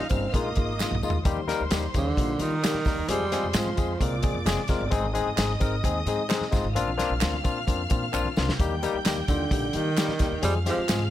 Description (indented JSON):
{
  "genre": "uptempo 1960s-style soul",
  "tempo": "131 BPM",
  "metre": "4/4",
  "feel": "straight",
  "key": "unclear",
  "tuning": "A4 = 440 Hz",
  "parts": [
    { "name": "breathy tenor saxophone", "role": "melody", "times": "0.0-4.7, 9.3-11.1 s", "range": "Bb2 to C4", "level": "-29 LUFS", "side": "right 4 dB", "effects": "none" },
    { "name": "dark studio string section", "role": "second line", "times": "0.0-11.1 s", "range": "Bb4 to G6", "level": "-34 LUFS", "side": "equal", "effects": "none" },
    { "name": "barky tine electric piano", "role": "accompaniment", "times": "0.0-11.0 s", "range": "G3 to Bb4", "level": "-29 LUFS", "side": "left 6 dB", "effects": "overdrive" },
    { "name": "upright bass", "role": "bass", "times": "0.1-11.1 s", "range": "F1 to Eb3", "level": "-30 LUFS", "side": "equal", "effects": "none" },
    { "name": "warm soul drum kit", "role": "drums", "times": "0.1-11.0 s", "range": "hi-hat, kick drum, snare drum, toms", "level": "-27 LUFS", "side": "equal", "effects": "none" },
    { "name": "congas", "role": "percussion", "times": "0.1-11.1 s", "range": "none", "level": "-40 LUFS", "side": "right 3 dB", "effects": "none" },
    { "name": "tambourine and handclaps", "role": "percussion", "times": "0.1-11.0 s", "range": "none", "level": "-37 LUFS", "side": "right 4 dB", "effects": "none" }
  ],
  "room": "small room ambience",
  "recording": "none",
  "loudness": "-23 LUFS",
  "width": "side -12 dB against mid",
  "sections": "0.0-1.3 A section; 1.3-11.1 B section",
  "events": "drum fill 0.8-1.3, 8.1-8.6",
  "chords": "0.3 Bb7sus4; 1.3 Eb; 3.1 Fm; 4.9 Ab; 6.8 Bbadd9; 8.6 Eb; 10.4 Fm",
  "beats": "0.34 0.80 | 1.26 1.72 2.17 2.63 | 3.09 3.55 4.01 4.47 | 4.93 5.38 5.84 6.30 | 6.76 7.22 7.68 8.14 | 8.60 9.05 9.51 9.97 | 10.43 10.89"
}